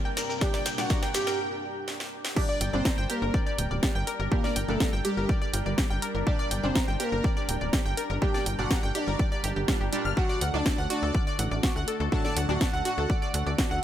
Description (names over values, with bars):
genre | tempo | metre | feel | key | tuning
melodic techno | 123 BPM | 4/4 | straight | G harmonic minor | A4 = 439 Hz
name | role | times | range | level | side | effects
lush unison pad | sustained chords | 0.0-13.8 s | G2 to Bb4 | -38 LUFS | equal | chorus, vintage 12-bit sampler grit, sidechain pumping
synth brass stab | stabs | 0.0-13.8 s | A2 to D4 | -38 LUFS | right 2 dB | chorus, phaser, sidechain pumping, dub echo
granular cloud pad | texture | 0.0-1.4 s | D4 to G5 | -42 LUFS | right 1 dB | built-in reverb, sidechain pumping
analog pluck | arpeggios | 0.1-13.8 s | F#4 to F6 | -33 LUFS | equal | chorus, sidechain pumping, dub echo
techno drum kit | drums | 0.2-13.7 s | crash cymbal, hi-hat, snare drum | -32 LUFS | equal | high-pass filter on snare, sidechain pumping on hats, high-pass filter on hats, sidechain pumping on cymbals, high-pass filter on cymbals, high-pass filter on room
shekere | percussion | 0.2-1.4 s | none | -38 LUFS | left 4 dB | dub echo
expressive portamento lead | melody | 0.4-13.1 s | G3 to A4 | -35 LUFS | equal | analog chorus, cassette tape, sidechain pumping, dub echo
soft supersaw | second line | 0.4-13.1 s | G4 to A5 | -38 LUFS | right 1 dB | sidechain pumping, dub echo
electronic kick drum | drums | 0.4-13.7 s | none | -27 LUFS | equal | overdrive
tight sequencer bass | bass | 2.6-13.8 s | D1 to D2 | -30 LUFS | equal | sidechain pumping
room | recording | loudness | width
light reverb | echo-heavy mix | -25 LUFS | side -11 dB against mid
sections
0.0-2.4 A section; 2.4-13.8 B section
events
build-up 0.0-2.4; drum fill 0.0-1.4, 1.9-2.4; break 1.4-2.4; drop 2.4-13.8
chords
0.0 Gm; 10.2 D